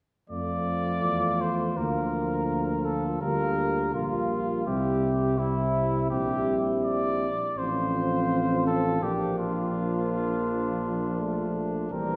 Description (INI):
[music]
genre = classical, brass quintet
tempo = 83 BPM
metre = 4/4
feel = straight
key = F major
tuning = A4 = 440 Hz
[part]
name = warm trumpet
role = melody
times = 0.3-12.2 s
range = E4 to D5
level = -33 LUFS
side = equal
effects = none
[part]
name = mellow flugelhorn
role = second line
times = 0.3-12.2 s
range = C4 to F4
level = -36 LUFS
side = equal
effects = none
[part]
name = dark euphonium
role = accompaniment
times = 0.3-12.2 s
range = E3 to G3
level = -35 LUFS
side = equal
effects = none
[part]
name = mellow French horn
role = accompaniment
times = 0.3-12.2 s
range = G3 to C4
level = -34 LUFS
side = equal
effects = none
[part]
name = mellow tuba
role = bass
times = 0.3-12.2 s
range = A1 to F2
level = -34 LUFS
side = equal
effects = none
[sound]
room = wet scoring stage reverb, RT60 1.9 s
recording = heard from further back in the room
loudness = -27 LUFS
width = mono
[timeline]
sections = 0.3-12.2 A section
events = none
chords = 0.3 F; 1.8 Bb/D; 3.2 Gm7/D; 4.7 C; 6.1 C7/Bb; 7.6 F/A; 9.0 Bb